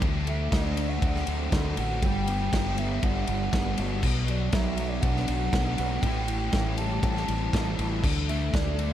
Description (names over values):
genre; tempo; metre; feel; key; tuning
rock, shoegaze and dream pop; 120 BPM; 4/4; straight; unclear; A4 = 440 Hz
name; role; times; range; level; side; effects
thick fuzz guitar; riff; 0.0-8.9 s; A2 to F#4; -30 LUFS; equal; distortion, analog chorus
growling fingered electric bass; bass; 0.0-8.9 s; G1 to D2; -29 LUFS; equal; overdrive
loose indie drum kit; drums; 0.0-8.9 s; crash cymbal, kick drum, ride cymbal, snare drum; -28 LUFS; equal; none
pure breathy sine lead; melody; 0.3-8.9 s; D5 to A5; -35 LUFS; right 2 dB; chorus, tape echo
room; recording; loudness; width
moderate lush hall reverb, RT60 1.9 s, studio reverb; dreamy mix soaked in reverb; -24 LUFS; side -11 dB against mid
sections
0.0-8.9 A section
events
none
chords
0.0 D7; 2.0 Gmaj7; 4.0 Bm; 6.0 Am7; 8.0 D5